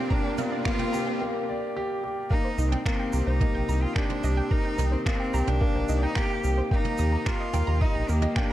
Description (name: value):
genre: piano and strings electronica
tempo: 109 BPM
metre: 4/4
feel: straight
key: C minor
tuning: A4 = 439 Hz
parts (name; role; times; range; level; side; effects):
- bright cello; melody; 0.0-8.5 s; Bb3 to G4; -32 LUFS; equal; shimmer reverb
- lush unison pad; sustained chords; 0.0-8.5 s; Eb3 to Bb4; -38 LUFS; equal; none
- analog pluck; arpeggios; 0.0-8.5 s; Bb4 to Eb6; -38 LUFS; right 2 dB; chorus, sidechain pumping, digital delay, shimmer reverb
- clear grand piano; riff; 0.0-8.5 s; Bb3 to Eb5; -30 LUFS; left 2 dB; shimmer reverb
- riser; sound effects; 0.0-1.2 s; none; -35 LUFS; right 2 dB; none
- electronic kick drum; drums; 0.1-8.5 s; none; -26 LUFS; equal; none
- jazz brush drum kit; drums; 0.4-8.5 s; finger snaps, shaker, toms; -36 LUFS; right 3 dB; none
- round analog bass; bass; 2.6-8.3 s; Bb1 to Eb2; -25 LUFS; equal; sidechain pumping
room: light reverb, small room ambience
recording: dark, warm production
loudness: -24 LUFS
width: side -13 dB against mid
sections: 0.0-2.3 A section; 2.3-8.5 B section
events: build-up 0.0-2.3; riser 0.0-1.2; filter sweep on cello 0.0-2.3; break 1.2-2.3; drop 2.3-8.5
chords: 0.0 Gm7; 2.3 Cm7